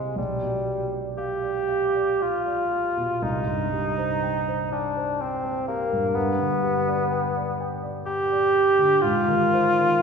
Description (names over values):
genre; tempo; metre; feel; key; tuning
classical, romantic duo for bassoon and grand piano; 58-65 BPM; 3/4; rubato; unclear; A4 = 439 Hz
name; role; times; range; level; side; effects
warm bassoon; melody; 0.0-10.0 s; G3 to G4; -22 LUFS; equal; none
warm grand piano; accompaniment; 0.0-10.0 s; B1 to G5; -28 LUFS; equal; none
room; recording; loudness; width
wet concert hall reverb, RT60 2.2 s; heard from further back in the room; -21 LUFS; side -6 dB against mid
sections
0.0-10.0 A section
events
none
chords
0.2 G7/B; 3.2 Cm; 6.2 G; 9.0 Ab